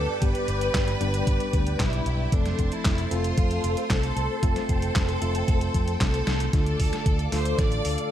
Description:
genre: italo disco.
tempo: 114 BPM.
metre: 4/4.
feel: straight.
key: unclear.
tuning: A4 = 439 Hz.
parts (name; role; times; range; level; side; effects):
bright symphonic violin section; melody; 0.0-8.1 s; D4 to D5; -32 LUFS; right 2 dB; ping-pong delay.
phased string machine; sustained chords; 0.0-8.1 s; A4 to D6; -32 LUFS; equal; ensemble chorus, phaser.
tine electric piano; stabs; 0.0-8.1 s; G2 to A4; -31 LUFS; left 2 dB; medium stereo tremolo.
picked electric bass with an envelope filter; bass; 0.0-8.0 s; F1 to F2; -28 LUFS; equal; none.
detuned 8-bit digital drum machine; drums; 0.2-8.1 s; handclaps, hi-hat, snare drum; -32 LUFS; equal; high-pass filter on hats, high-pass filter on snare, high-pass filter on room.
electronic kick drum; drums; 0.2-7.7 s; none; -25 LUFS; equal; none.
room: light reverb.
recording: dark, warm production.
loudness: -22 LUFS.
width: side -11 dB against mid.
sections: 0.0-6.5 A section; 6.5-8.1 B section.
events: drum fill 6.3, 6.5-8.1; band accent 6.3.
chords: 0.0 G; 2.3 F; 6.5 Dm.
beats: | 0.22 0.74 1.27 1.80 | 2.32 2.85 3.38 3.90 | 4.43 4.96 5.48 6.01 | 6.53 7.06 7.59.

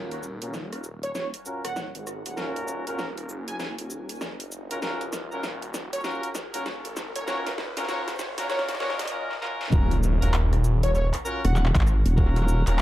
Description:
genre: glitch hop.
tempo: 98 BPM.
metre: 4/4.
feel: swing 62% on 16ths.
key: Eb minor.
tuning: A4 = 440 Hz.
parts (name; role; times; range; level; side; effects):
bright horn section; stabs; 0.0-12.8 s; Db4 to Bb4; -33 LUFS; equal; sidechain pumping, low-pass filter, dub echo.
phased detuned saw bass; bass; 0.0-12.8 s; Eb1 to Ab1; -28 LUFS; equal; phaser, overdrive, high-pass filter.
riser and impact; sound effects; 0.0-12.2 s; none; -36 LUFS; equal; none.
dubstep drum kit; drums; 0.1-12.8 s; handclaps, hi-hat, rim click, shaker, snare drum; -34 LUFS; equal; overdrive, high-pass filter on snare, high-pass filter on perc, high-pass filter on hats, high-pass filter on room, dub echo.
plucky unison lead; melody; 1.0-11.6 s; Db5 to Ab5; -34 LUFS; equal; lush chorus, cassette tape, dub echo.
electronic kick drum; drums; 9.7-12.3 s; none; -21 LUFS; equal; overdrive.
vowel-sweep wobble bass; bass; 11.4-12.6 s; Eb1; -20 LUFS; equal; chorus.
room: light reverb, digital ambience.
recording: echo-heavy mix, high-pass filter.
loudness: -24 LUFS.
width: side -15 dB against mid.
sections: 0.0-9.7 A section; 9.7-12.8 B section.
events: build-up 0.0-9.7; drum fill 0.0-9.1, 9.3-9.7; riser 0.0-9.1; filter sweep on horn section 0.0-9.7; break 9.1-9.7; drop 9.7-12.8; impact 9.7-12.2.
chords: 0.0 Ebm9.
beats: 0.54 1.15 1.77 | 2.38 2.99 3.60 4.22 | 4.83 5.44 6.05 6.67 | 7.28 7.89 8.50 9.11 | 9.73 10.34 10.95 11.56 | 12.18 12.79.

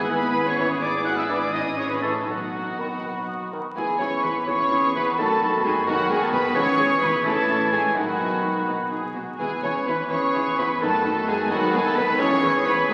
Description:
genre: quick classical-period movement for symphony orchestra.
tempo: 79-88 BPM (dotted quarters).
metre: 6/8.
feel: rubato.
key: E major.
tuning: A4 = 440 Hz.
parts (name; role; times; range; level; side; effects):
dark studio violin section; melody; 0.0-12.9 s; F#5 to F#6; -33 LUFS; equal; none.
clear clarinet; second line; 0.0-12.9 s; F#4 to F#5; -33 LUFS; equal; none.
rich studio violin section; second line; 0.0-12.9 s; F#4 to F#5; -32 LUFS; equal; none.
dark studio viola section; accompaniment; 0.0-12.9 s; G#3 to E4; -34 LUFS; equal; none.
mellow French horn section; sustained chords; 0.0-12.9 s; F#3 to F#4; -33 LUFS; equal; none.
warm studio cello section; bass; 0.0-12.9 s; D#4 to A4; -34 LUFS; equal; none.
warm studio double bass section; bass; 0.0-12.9 s; G#1 to F#2; -41 LUFS; equal; none.
warm oboe; second line; 0.1-12.9 s; F#4 to B5; -30 LUFS; equal; none.
mellow hollow small flute group; second line; 0.6-12.9 s; F#5 to D#6; -31 LUFS; equal; none.
mellow bassoon; accompaniment; 0.6-12.9 s; D#3 to E3; -32 LUFS; equal; none.
room: wet concert hall reverb, RT60 2.1 s.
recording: very old 78 rpm record, vinyl crackle.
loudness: -23 LUFS.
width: mono.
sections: 0.0-3.8 A section; 3.8-12.9 B section.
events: none.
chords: 0.0 E/G#; 1.5 A; 2.3 B; 3.8 E; 5.2 B7/F#; 6.5 E; 7.2 A; 8.0 B; 9.4 E; 10.8 B7/F#; 12.2 E.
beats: 0.12 | 0.82 1.54 | 2.28 3.03 | 3.76 4.48 | 5.18 5.87 | 6.55 7.24 | 7.95 8.67 | 9.39 10.11 | 10.82 11.52 | 12.20 12.90.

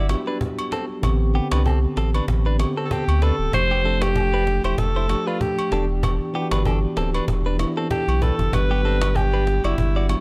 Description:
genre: afrobeats.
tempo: 96 BPM.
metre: 4/4.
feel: swing 55% on 16ths.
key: G major.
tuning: A4 = 440 Hz.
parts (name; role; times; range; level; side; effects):
clear alto saxophone; melody; 0.0-10.2 s; E4 to C5; -27 LUFS; equal; tape echo.
mellow tine electric piano; accompaniment; 0.0-10.2 s; D3 to A4; -29 LUFS; equal; none.
direct-recorded clean electric guitar; riff; 0.0-10.1 s; B3 to D5; -32 LUFS; equal; none.
saturated sub bass; bass; 0.0-10.2 s; D1 to D2; -23 LUFS; equal; none.
cajon; drums; 0.1-10.2 s; none; -32 LUFS; equal; none.
agogo bells and woodblock; percussion; 0.1-10.2 s; none; -36 LUFS; equal; none.
room: small room ambience.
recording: dry, gritty hardware recording.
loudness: -21 LUFS.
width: mono.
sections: 0.0-10.2 A section.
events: drum fill 7.9-8.5.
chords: 0.0 Gmaj7; 1.0 Am11; 3.5 F69; 5.7 Em7; 8.5 Gmaj7.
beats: 0.41 | 1.03 1.66 2.28 2.91 | 3.53 4.16 4.78 5.41 | 6.03 6.66 7.28 7.91 | 8.53 9.16 9.78.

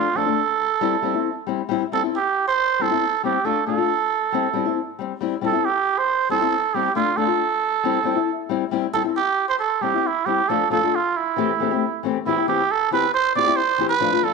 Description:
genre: highlife.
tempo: 136 BPM.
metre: 4/4.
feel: straight.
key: C major.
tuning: A4 = 439 Hz.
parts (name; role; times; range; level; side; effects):
trumpet with cup mute; melody; 0.0-14.3 s; E4 to D5; -20 LUFS; right 8 dB; none.
nylon-string guitar; accompaniment; 0.0-14.3 s; E3 to G4; -23 LUFS; left 13 dB; none.
room: moderate echo chamber reverb, RT60 1.4 s, studio reverb.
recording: 1960s-style stereo with parts hard left and right.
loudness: -19 LUFS.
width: side -4 dB against mid.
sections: 0.0-12.3 A section; 12.3-14.3 B section.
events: none.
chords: 0.0 Dm; 0.8 C; 3.5 Dm; 4.3 C; 7.0 Dm; 7.8 C; 10.5 Dm; 11.4 Am7; 12.3 C.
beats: 0.38 0.82 1.26 | 1.70 2.14 2.58 3.01 | 3.45 3.89 4.33 4.77 | 5.21 5.65 6.09 6.53 | 6.96 7.41 7.84 8.29 | 8.72 9.17 9.61 10.05 | 10.49 10.93 11.37 11.81 | 12.25 12.69 13.13 13.57 | 14.01.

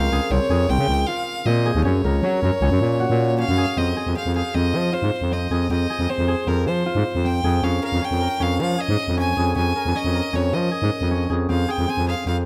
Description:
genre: contemporary instrumental, chamber music in an uneven meter.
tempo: 156 BPM.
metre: 5/4.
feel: straight.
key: F minor.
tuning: A4 = 441 Hz.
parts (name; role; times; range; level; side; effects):
bright violin; melody; 0.0-12.4 s; Bb4 to Ab5; -28 LUFS; equal; none.
concert harp; arpeggios; 0.0-12.5 s; C4 to Bb4; -29 LUFS; equal; none.
growling FM bass; bass; 0.0-12.5 s; C2 to Gb3; -23 LUFS; equal; none.
room: light reverb.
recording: close, detailed microphones.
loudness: -21 LUFS.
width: mono.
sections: 0.0-3.8 A section; 3.8-12.5 B section.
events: none.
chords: 0.0 Dbmaj7; 1.8 Gbmaj7; 3.8 Fm7; 7.6 Eb7sus4/F; 11.5 Fm.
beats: 0.31 0.69 1.08 1.46 | 1.85 2.23 2.62 3.00 3.38 | 3.77 4.16 4.54 4.93 5.31 | 5.70 6.08 6.47 6.86 7.24 | 7.63 8.01 8.40 8.79 9.17 | 9.56 9.94 10.33 10.72 11.10 | 11.49 11.88 12.26.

